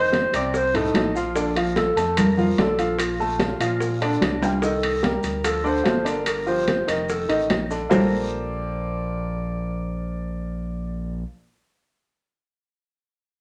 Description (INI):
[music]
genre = Afro-Cuban jazz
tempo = 146 BPM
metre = 4/4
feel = straight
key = Bb major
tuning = A4 = 441 Hz
[part]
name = dark alto saxophone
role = melody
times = 0.0-11.3 s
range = D4 to D5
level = -29 LUFS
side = equal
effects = none
[part]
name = clear concert grand piano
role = accompaniment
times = 0.0-11.2 s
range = A2 to A5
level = -28 LUFS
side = equal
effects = none
[part]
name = round analog bass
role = bass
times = 0.0-11.2 s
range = F1 to Bb2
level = -32 LUFS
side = equal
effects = none
[part]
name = bongos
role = percussion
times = 0.1-8.0 s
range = none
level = -32 LUFS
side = equal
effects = none
[part]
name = congas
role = percussion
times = 0.1-8.0 s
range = none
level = -28 LUFS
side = equal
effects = none
[part]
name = guiro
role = percussion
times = 0.1-8.0 s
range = none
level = -46 LUFS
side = equal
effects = none
[part]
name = maracas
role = percussion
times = 0.1-8.0 s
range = none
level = -45 LUFS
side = equal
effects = none
[part]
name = timbales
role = percussion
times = 0.1-8.0 s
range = none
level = -30 LUFS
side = equal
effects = none
[part]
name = claves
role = percussion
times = 0.3-8.0 s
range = none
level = -38 LUFS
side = equal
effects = none
[sound]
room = wet studio reverb, RT60 0.6 s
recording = none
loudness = -23 LUFS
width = mono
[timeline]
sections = 0.0-4.6 A section; 4.6-7.9 B section; 7.9-11.2 C section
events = drum fill 4.4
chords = 0.0 F7; 1.4 Bbmaj13; 4.6 Cm7; 5.4 Dm7; 6.3 G7sus4; 7.1 F7; 7.9 Bbmaj13